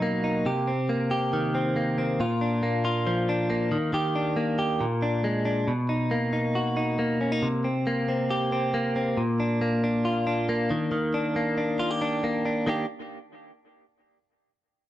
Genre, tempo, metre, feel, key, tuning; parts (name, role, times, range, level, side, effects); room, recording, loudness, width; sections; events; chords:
indie pop; 137 BPM; 4/4; straight; Eb major; A4 = 440 Hz
direct-recorded clean electric guitar; solo; 0.0-12.9 s; Bb2 to G4; -24 LUFS; equal
moderate studio reverb, RT60 0.6 s; dark, warm production; -24 LUFS; side -13 dB against mid
0.0-5.7 A section; 5.7-12.7 B section; 12.7-14.4 C section
0.5 Cm7; 2.2 Bb; 3.7 Ebmaj7; 4.8 Bb7; 5.7 Bmaj7; 7.4 C5; 9.2 Bb; 10.7 Ebmaj7